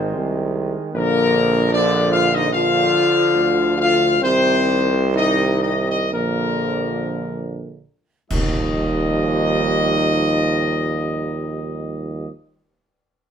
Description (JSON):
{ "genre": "classical, ceremonial fanfare", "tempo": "52-78 BPM", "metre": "4/4", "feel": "straight", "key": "Eb major", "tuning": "A4 = 440 Hz", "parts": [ { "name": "dark trumpet section", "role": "melody", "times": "0.0-12.3 s", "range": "Bb4 to F5", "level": "-21 LUFS", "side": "left 2 dB", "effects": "none" }, { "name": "mellow French horn section", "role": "sustained chords", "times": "0.0-12.3 s", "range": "Bb3 to F4", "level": "-22 LUFS", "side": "left 4 dB", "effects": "none" }, { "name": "mellow trombone section", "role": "sustained chords", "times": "0.0-12.3 s", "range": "C3 to Ab3", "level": "-26 LUFS", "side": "right 3 dB", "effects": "none" }, { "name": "clear tuba", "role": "bass", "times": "0.0-12.3 s", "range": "Ab1 to Eb2", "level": "-22 LUFS", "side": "right 3 dB", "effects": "none" }, { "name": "clash cymbals and concert bass drum", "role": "percussion", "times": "8.3-10.5 s", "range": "none", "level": "-26 LUFS", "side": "equal", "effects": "none" } ], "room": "moderate studio reverb, RT60 0.7 s", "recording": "none", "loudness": "-16 LUFS", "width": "side -8 dB against mid", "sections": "0.0-8.3 A section; 8.3-12.8 B section", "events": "slowing down 0.0-8.3; band accent 8.3-9.4", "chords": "0.0 Ab; 0.9 Bb; 4.2 Cm; 6.1 Bb; 8.3 Ebadd9" }